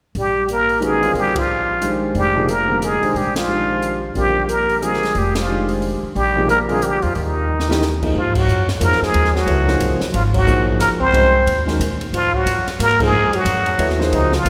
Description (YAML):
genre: modal jazz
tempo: 180 BPM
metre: 3/4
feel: swing 62% on 8ths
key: Bb mixolydian, Ab mixolydian from 8.1 s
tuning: A4 = 440 Hz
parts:
  - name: upright bass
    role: bass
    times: 0.1-14.5 s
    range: F1 to Bb2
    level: -24 LUFS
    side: equal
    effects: none
  - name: open jazz drum kit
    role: drums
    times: 0.1-14.5 s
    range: crash cymbal, hi-hat, kick drum, ride cymbal, snare drum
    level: -30 LUFS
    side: equal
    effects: none
  - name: trumpet with plunger mute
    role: melody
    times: 0.2-14.5 s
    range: Eb4 to C5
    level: -21 LUFS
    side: equal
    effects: none
  - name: clear trombone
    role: second line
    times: 0.2-14.5 s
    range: Eb3 to C4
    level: -27 LUFS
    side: equal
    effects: none
  - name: dark grand piano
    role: accompaniment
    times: 0.8-14.5 s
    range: C3 to Eb5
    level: -25 LUFS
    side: equal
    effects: none
room: wet concert hall reverb, RT60 2.5 s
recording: recorded in a church or concert hall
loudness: -18 LUFS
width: mono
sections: 0.1-8.1 A section; 8.1-14.5 B section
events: band accent 1.3, 3.3, 5.3, 8.3, 10.3, 13.0; drum fill 7.5-7.8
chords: 0.1 Bb13; 7.1 Eb5; 8.1 Ab13; 12.1 Gbadd9